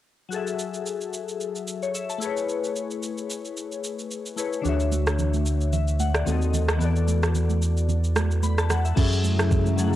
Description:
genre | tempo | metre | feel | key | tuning
amapiano | 111 BPM | 4/4 | swing 55% on 16ths | F# minor | A4 = 441 Hz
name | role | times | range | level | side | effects
glassy digital keys | accompaniment | 0.3-10.0 s | D3 to B5 | -28 LUFS | left 6 dB | chorus
smooth R&B drum kit | drums | 0.3-10.0 s | crash cymbal, kick drum, rim click, shaker | -28 LUFS | right 1 dB | cassette tape
round analog bass | bass | 4.6-10.0 s | D2 to F#2 | -23 LUFS | right 1 dB | none
congas | percussion | 4.6-9.8 s | none | -32 LUFS | right 11 dB | none
granular cloud pad | sustained chords | 9.3-10.0 s | C#3 to E4 | -28 LUFS | right 1 dB | built-in reverb
room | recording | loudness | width
light reverb | home recording on cassette | -22 LUFS | side -13 dB against mid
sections
0.3-9.0 A section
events
none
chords
0.3 F#m7; 2.2 Amaj7; 4.6 Dmaj9; 6.3 D#dim7; 6.8 E9sus4; 9.0 F#m7

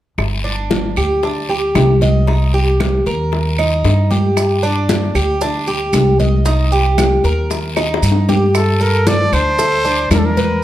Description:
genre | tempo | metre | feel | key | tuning
latin, Cuban son and guajira | 115 BPM | 4/4 | straight | G minor | A4 = 442 Hz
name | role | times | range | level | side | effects
upright bass | bass | 0.2-10.6 s | G1 to G2 | -16 LUFS | equal | none
bongos | percussion | 0.2-10.4 s | none | -24 LUFS | left 6 dB | none
claves | percussion | 0.2-10.4 s | none | -28 LUFS | right 6 dB | none
congas | percussion | 0.2-10.6 s | none | -22 LUFS | left 1 dB | none
guiro | percussion | 0.2-10.6 s | none | -28 LUFS | left 4 dB | none
Cuban tres | arpeggios | 0.4-10.6 s | D4 to Eb5 | -18 LUFS | right 1 dB | none
maracas | percussion | 4.4-10.6 s | none | -29 LUFS | right 5 dB | none
breathy trumpet | melody | 8.6-10.6 s | A4 to D5 | -16 LUFS | equal | none
room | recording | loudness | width
light reverb | none | -12 LUFS | side -13 dB against mid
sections
0.2-8.5 A section; 8.5-10.6 B section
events
drum fill 7.8-8.5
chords
0.2 G5; 2.3 Cm7; 4.4 G5; 6.5 Cm7; 8.5 Gsus2

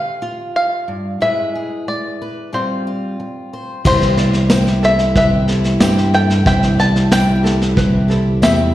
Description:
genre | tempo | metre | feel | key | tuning
indie folk with a building arrangement | 92 BPM | 4/4 | straight | C major | A4 = 439 Hz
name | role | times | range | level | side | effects
bluegrass banjo | melody | 0.0-8.7 s | C5 to A5 | -18 LUFS | left 1 dB | slapback echo
fingerpicked steel-string acoustic guitar | accompaniment | 0.0-6.5 s | G2 to C5 | -26 LUFS | left 1 dB | slapback echo
picked plugged-in twelve-string acoustic guitar | accompaniment | 3.8-8.7 s | C3 to G4 | -24 LUFS | left 6 dB | slapback echo
dark grand piano | accompaniment | 3.9-8.7 s | C2 to E5 | -25 LUFS | left 1 dB | slapback echo
mellow tonewheel organ | sustained chords | 3.9-8.7 s | C3 to E4 | -23 LUFS | right 1 dB | slow rotary speaker
ukulele | arpeggios | 3.9-8.7 s | G4 to E5 | -27 LUFS | right 6 dB | slapback echo
tine electric piano | bass | 3.9-8.7 s | C2 to G2 | -15 LUFS | equal | none
vintage brush drum kit | drums | 3.9-8.6 s | crash cymbal, kick drum, snare drum | -18 LUFS | equal | slapback echo
tambourine | percussion | 4.5-8.6 s | none | -34 LUFS | right 3 dB | none
room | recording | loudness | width
light reverb | live gig heard through the venue's PA, recital hall reverb | -13 LUFS | side -14 dB against mid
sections
0.0-3.8 A section; 3.8-8.7 B section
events
none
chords
0.0 G7; 1.2 E/G#; 2.5 G7sus4; 3.8 C

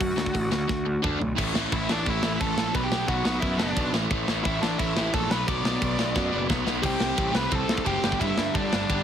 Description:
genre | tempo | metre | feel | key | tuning
punk rock | 176 BPM | 4/4 | straight | unclear | A4 = 440 Hz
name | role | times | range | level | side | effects
smooth overdriven lead guitar | melody | 0.0-9.0 s | D4 to D6 | -29 LUFS | equal | none
overdriven electric guitar | riff | 0.0-9.0 s | G2 to D4 | -28 LUFS | equal | none
fuzz picked electric bass | bass | 0.0-9.0 s | F#1 to G2 | -30 LUFS | equal | overdrive
tight metal drum kit | drums | 0.0-9.0 s | crash cymbal, hi-hat, kick drum, ride cymbal, snare drum, toms | -28 LUFS | equal | none
room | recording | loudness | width
light reverb | heavily compressed radio sound, multiband compression | -23 LUFS | side -9 dB against mid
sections
0.0-1.4 A section; 1.4-6.8 B section; 6.8-9.0 C section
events
drum fill 0.7-1.4, 6.2-6.8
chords
0.0 D; 1.4 A5; 2.7 Bm; 3.9 A5; 5.3 Bm; 6.8 C5; 8.0 G5

